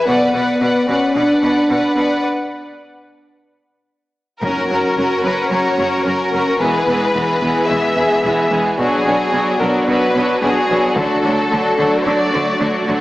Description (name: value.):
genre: cinematic, epic orchestral film score.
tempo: 110 BPM.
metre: 4/4.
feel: straight.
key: F# mixolydian.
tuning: A4 = 440 Hz.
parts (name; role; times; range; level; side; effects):
warm symphonic violin section; melody; 0.0-12.9 s; G#4 to F#5; -20 LUFS; left 2 dB; none.
warm symphonic violin section; second line; 0.0-13.0 s; B3 to D5; -20 LUFS; equal; none.
rich symphonic viola section; accompaniment; 0.0-13.0 s; E3 to B4; -21 LUFS; right 1 dB; none.
mellow French horn section; sustained chords; 0.0-13.0 s; B3 to G#4; -20 LUFS; equal; none.
rich symphonic cello section; bass; 0.1-13.0 s; E2 to D3; -24 LUFS; right 1 dB; none.
rich symphonic double bass section; bass; 0.1-0.3, 4.4-13.0 s; E1 to D2; -28 LUFS; right 1 dB; none.
taiko ensemble; drums; 4.4-5.5, 8.8-12.6 s; none; -29 LUFS; equal; none.
timpani; percussion; 4.4-5.2 s; F#2; -33 LUFS; equal; none.
room: wet scoring stage reverb, RT60 1.7 s.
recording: heavily compressed radio sound, small speaker sound.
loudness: -14 LUFS.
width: side -16 dB against mid.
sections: 0.0-4.4 A section; 4.4-13.0 A section.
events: break 2.2-4.4.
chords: 0.1 Bm; 2.2 N.C.; 4.4 F#; 6.6 E; 8.8 Bm; 11.0 D.